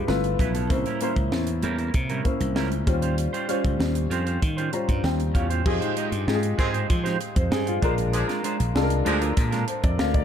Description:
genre	polished 1980s jazz-funk pop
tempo	97 BPM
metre	4/4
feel	straight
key	unclear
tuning	A4 = 440 Hz
part	clear concert grand piano	accompaniment	0.0-10.2 s	G3 to Bb5	-28 LUFS	left 3 dB	wide subtle chorus
part	slap bass	bass	0.0-10.2 s	G1 to F3	-26 LUFS	equal	none
part	clean electric guitar	riff	0.1-10.2 s	F3 to Eb5	-32 LUFS	right 7 dB	lush chorus
part	crisp fusion drum kit	drums	0.1-10.2 s	crash cymbal, hi-hat, kick drum, snare drum	-26 LUFS	equal	none
part	warm horn section	second line	5.7-9.3 s	Eb3 to Ab4	-32 LUFS	equal	ping-pong delay
room	light reverb, small room ambience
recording	dark, warm production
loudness	-22 LUFS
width	side -9 dB against mid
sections	0.0-5.7 A section; 5.7-10.2 B section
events	grand piano fill 4.4-5.7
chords	0.1 G13; 0.7 C7b9; 2.9 Eb13; 5.7 Fm9; 7.8 Bb7

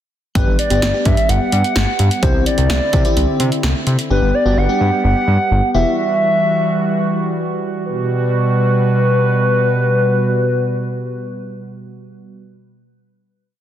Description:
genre	synth-pop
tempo	128 BPM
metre	4/4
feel	straight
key	G major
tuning	A4 = 441 Hz
part	hollow clarinet-like synth lead	melody	0.4-12.4 s	B4 to F#5	-19 LUFS	left 1 dB	chorus, tape echo
part	FM electric piano with soft pad layer	accompaniment	0.4-5.9 s	B3 to G4	-22 LUFS	left 2 dB	chorus
part	warm analog pad	sustained chords	0.4-12.4 s	B2 to G4	-19 LUFS	right 2 dB	chorus
part	fat analog bass	bass	0.4-5.8 s	E1 to C3	-16 LUFS	equal	none
part	punchy analog drum machine	drums	0.4-4.1 s	hi-hat, kick drum, snare drum	-18 LUFS	equal	none
room	moderate lush hall reverb, RT60 1.9 s, digital ambience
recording	dense, heavily limited modern master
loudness	-14 LUFS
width	side -10 dB against mid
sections	0.4-7.9 verse; 7.9-11.6 final chord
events	none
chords	0.4 Gmaj7; 2.2 Cadd9; 4.1 Gmaj7; 5.7 Emadd9; 7.9 Gmaj7

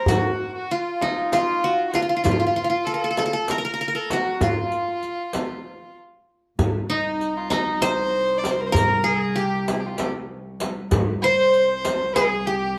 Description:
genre	Turkish makam ensemble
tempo	194 BPM (eighths)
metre	7/8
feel	straight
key	F makam hicaz, C makam nihavent from 6.6 s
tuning	A4 = 439 Hz
part	qanun	melody	0.0-12.8 s	Eb4 to C5	-25 LUFS	equal	none
part	warm violin	second line	0.0-12.8 s	Eb4 to D5	-29 LUFS	equal	none
part	darbuka	percussion	0.1-12.3 s	none	-28 LUFS	equal	none
part	frame drum	percussion	0.1-12.3 s	none	-32 LUFS	equal	none
part	riq	percussion	0.1-12.3 s	none	-35 LUFS	equal	none
part	dark studio cello section	drone	6.6-12.8 s	C2	-33 LUFS	equal	none
room	wet studio reverb, RT60 0.8 s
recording	band playing live in one room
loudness	-22 LUFS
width	mono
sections	0.0-6.6 A section; 6.6-12.8 B section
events	break 5.7-6.6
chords	none

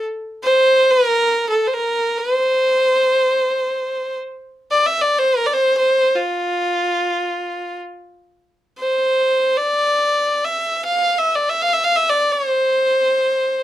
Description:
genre	Persian modal ensemble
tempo	free time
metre	none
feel	none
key	unclear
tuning	A4 = 442 Hz
part	clear violin	solo	0.0-13.6 s	F4 to F5	-16 LUFS	equal	none
room	moderate studio reverb, RT60 0.5 s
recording	dark, warm production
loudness	-15 LUFS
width	side -12 dB against mid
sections	0.0-8.5 A section; 8.5-13.6 A section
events	none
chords	none

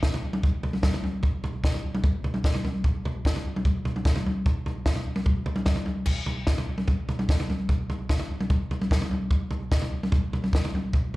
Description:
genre	rock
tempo	149 BPM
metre	4/4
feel	straight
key	none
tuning	none
part	compact cocktail drum kit	drums	0.0-11.2 s	crash cymbal, kick drum, snare drum, toms	-24 LUFS	equal	none
room	light reverb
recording	live gig heard through the venue's PA, club reverb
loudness	-24 LUFS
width	side -19 dB against mid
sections	0.0-11.2 A section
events	none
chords	none

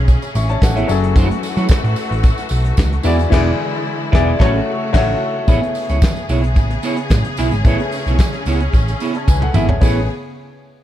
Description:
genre	disco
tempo	111 BPM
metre	4/4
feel	straight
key	A major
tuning	A4 = 440 Hz
part	clear grand piano	accompaniment	0.0-10.1 s	E3 to C#6	-22 LUFS	left 5 dB	none
part	clear studio string section	sustained chords	0.0-10.1 s	C#3 to G#4	-25 LUFS	left 1 dB	none
part	hollow-body short-scale picked electric bass	bass	0.0-10.1 s	E1 to F#3	-18 LUFS	equal	none
part	clean electric guitar	accompaniment	0.1-10.0 s	A3 to E5	-24 LUFS	right 5 dB	harmonic tremolo
part	soft brush drum kit	drums	0.1-10.0 s	crash cymbal, hi-hat, kick drum, snare drum, toms	-14 LUFS	equal	none
part	tambourine	percussion	0.1-10.1 s	none	-34 LUFS	right 5 dB	none
room	little or no reverb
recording	dark, warm production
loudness	-14 LUFS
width	side -12 dB against mid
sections	0.0-5.5 A section; 5.5-9.8 B section; 9.8-10.8 C section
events	band accent 3.3-5.5; drum fill 9.3-9.8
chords	0.0 Amaj9; 0.9 F#m7; 3.0 E7; 4.4 A6; 5.5 Amaj9

